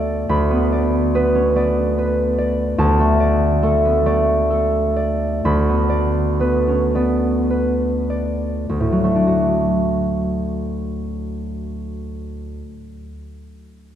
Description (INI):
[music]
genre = classical, solo harp piece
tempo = 48-74 BPM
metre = 3/4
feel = rubato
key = D major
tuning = A4 = 441 Hz
[part]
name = concert harp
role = solo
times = 0.0-12.8 s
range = D2 to B5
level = -17 LUFS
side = equal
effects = none
[sound]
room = wet church reverb, RT60 3.3 s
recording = heard from further back in the room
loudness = -16 LUFS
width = side -10 dB against mid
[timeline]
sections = 0.0-8.7 A section; 8.7-12.0 B section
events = slowing down 1.6-8.7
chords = 0.3 Bmadd9/D; 2.8 D5; 5.4 Bmadd9/D; 8.7 D